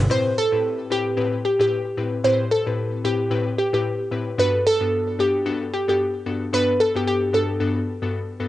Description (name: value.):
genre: afrobeats.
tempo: 112 BPM.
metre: 4/4.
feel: swing 58% on 16ths.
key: A dorian.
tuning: A4 = 442 Hz.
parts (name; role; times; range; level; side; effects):
glassy digital keys; accompaniment; 0.0-8.5 s; G2 to B4; -24 LUFS; left 2 dB; chorus.
glassy wavetable pluck; melody; 0.1-8.4 s; G4 to C5; -21 LUFS; equal; chorus, cassette tape, analog delay.
room: light reverb, small room ambience.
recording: home recording on cassette, nothing above 10.4 kHz.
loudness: -19 LUFS.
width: side -14 dB against mid.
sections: 0.1-8.5 A section.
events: none.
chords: 0.1 Am7; 4.4 Gmaj9.